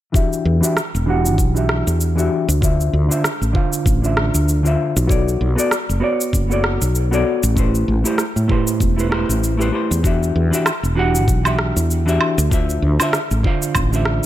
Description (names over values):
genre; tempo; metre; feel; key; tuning
sunset chillout; 97 BPM; 4/4; swing 56% on 16ths; E minor; A4 = 440 Hz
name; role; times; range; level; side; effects
hollow-body jazz guitar; accompaniment; 0.1-14.3 s; D3 to F#5; -20 LUFS; moving between left 5 dB and right 4 dB; auto-pan, low-pass filter, digital delay
electronic kick drum; drums; 0.1-13.9 s; none; -18 LUFS; equal; studio reverb
electronic shaker, rim click and woodblock; drums; 0.2-14.3 s; none; -23 LUFS; right 1 dB; studio reverb
woody fretless electric bass; bass; 0.5-14.2 s; E1 to A2; -18 LUFS; equal; none
room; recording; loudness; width
light reverb, digital ambience; none; -15 LUFS; side -13 dB against mid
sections
0.2-14.3 A section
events
filter sweep on hollow-body jazz guitar 0.2-14.3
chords
0.2 Em9; 2.6 Dm9; 5.1 Bm9; 7.6 Am9; 10.0 Em9; 12.5 Dm9